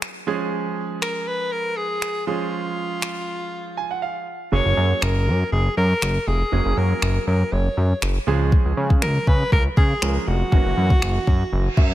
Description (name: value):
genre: dance-pop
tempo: 120 BPM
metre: 4/4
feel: straight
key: F# major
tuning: A4 = 440 Hz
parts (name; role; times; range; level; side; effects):
- bright grand piano; accompaniment; 0.0-11.9 s; E3 to G#5; -28 LUFS; right 7 dB; none
- smooth R&B drum kit; drums; 0.0-11.9 s; finger snaps, kick drum; -20 LUFS; equal; none
- downlifter and reverse cymbal; sound effects; 0.0-0.5, 11.6-11.9 s; none; -34 LUFS; right 2 dB; none
- bright alto saxophone; melody; 1.0-11.9 s; E#4 to C#5; -25 LUFS; left 1 dB; digital delay
- fat analog bass; bass; 4.5-11.9 s; E#1 to C#3; -20 LUFS; equal; sidechain pumping
room: little or no reverb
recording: none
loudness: -19 LUFS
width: side -14 dB against mid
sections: 0.0-11.9 A section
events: grand piano fill 3.5-4.5, 11.5-11.9; silent gap 4.0-4.5; reverse cymbal 11.6-11.9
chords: 0.3 C#; 4.5 F#add9; 8.3 C#; 10.5 F#7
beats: 0.02 | 0.52 1.02 1.52 2.02 | 2.52 3.02 3.52 4.02 | 4.52 5.02 5.52 6.02 | 6.52 7.02 7.52 8.02 | 8.52 9.02 9.52 10.02 | 10.52 11.02 11.52